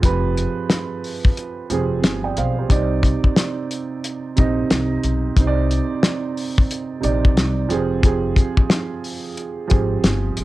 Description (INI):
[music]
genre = hip hop, boom-bap hip-hop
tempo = 90 BPM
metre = 4/4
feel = swing 61% on 16ths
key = C harmonic minor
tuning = A4 = 440 Hz
[part]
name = dark upright piano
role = accompaniment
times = 0.0-10.4 s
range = C3 to G5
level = -23 LUFS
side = right 5 dB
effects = cassette tape
[part]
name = upright bass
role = bass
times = 0.0-10.4 s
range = F1 to C2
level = -22 LUFS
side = left 1 dB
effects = none
[part]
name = cloth-damped thuddy drum kit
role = drums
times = 0.0-10.4 s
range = hi-hat, kick drum, snare drum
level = -17 LUFS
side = left 1 dB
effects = cassette tape
[sound]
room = little or no reverb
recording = home recording on cassette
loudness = -17 LUFS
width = side -17 dB against mid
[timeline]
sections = 0.0-10.4 A section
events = break 1.4-2.7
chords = 0.0 Fmadd9; 2.7 Cmadd9; 7.7 Fmadd9